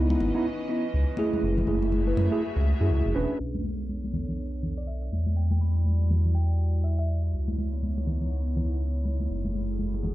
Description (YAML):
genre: deep house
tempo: 122 BPM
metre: 4/4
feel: swing 61% on 16ths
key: B minor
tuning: A4 = 441 Hz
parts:
  - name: airy breathy pad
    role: sustained chords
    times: 0.0-10.1 s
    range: E3 to E5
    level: -37 LUFS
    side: equal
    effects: chorus
  - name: mellow tine electric piano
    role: stabs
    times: 0.0-3.6 s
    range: A3 to B4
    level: -27 LUFS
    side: right 1 dB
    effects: slow stereo tremolo, tape echo
  - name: round analog bass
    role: bass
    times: 0.0-10.1 s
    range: E1 to F#2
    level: -25 LUFS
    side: equal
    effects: none
  - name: congas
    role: percussion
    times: 0.1-10.1 s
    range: none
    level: -33 LUFS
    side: left 1 dB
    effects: none
  - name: thumb-piano-like synth pluck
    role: melody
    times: 4.8-7.0 s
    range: D5 to B5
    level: -44 LUFS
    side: left 1 dB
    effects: chorus, tape echo
room: light reverb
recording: played on a big sound system in a bare room, cassette tape, stone room reverb, low-pass filter, nothing above 10.5 kHz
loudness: -24 LUFS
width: side -16 dB against mid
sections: 0.0-3.4 A section; 3.4-10.1 B section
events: none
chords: 0.0 C#m9; 1.4 F#m9; 3.4 Bm9; 5.1 Em9; 7.3 C#m9; 9.3 F#m9